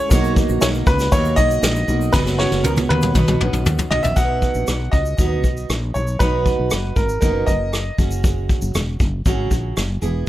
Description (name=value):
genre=acoustic pop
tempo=118 BPM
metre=4/4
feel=straight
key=B major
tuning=A4 = 440 Hz
part: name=bright upright piano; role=melody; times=0.0-7.9 s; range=A#4 to F#5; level=-22 LUFS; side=equal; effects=analog delay
part: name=picked steel-string acoustic guitar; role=accompaniment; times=0.0-10.3 s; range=F#2 to G#4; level=-24 LUFS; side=right 3 dB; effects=analog delay
part: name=reed electric piano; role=accompaniment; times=0.0-4.2 s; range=G#3 to C#5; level=-30 LUFS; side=left 3 dB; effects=tremolo, analog delay
part: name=woody fretless electric bass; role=bass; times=0.1-10.2 s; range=E1 to D#2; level=-22 LUFS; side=equal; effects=none
part: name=vintage brush drum kit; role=drums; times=0.1-10.1 s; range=kick drum, rim click, shaker, snare drum, toms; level=-19 LUFS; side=equal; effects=none
part: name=egg shaker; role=percussion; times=0.1-4.2 s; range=none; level=-38 LUFS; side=right 5 dB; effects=none
room=little or no reverb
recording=echo-heavy mix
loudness=-16 LUFS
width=side -14 dB against mid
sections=0.0-4.2 A section; 4.2-10.3 B section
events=drum fill 2.1-4.2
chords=0.1 Bmaj7; 2.1 F#sus4; 3.2 Badd9; 4.2 B; 8.0 F#sus2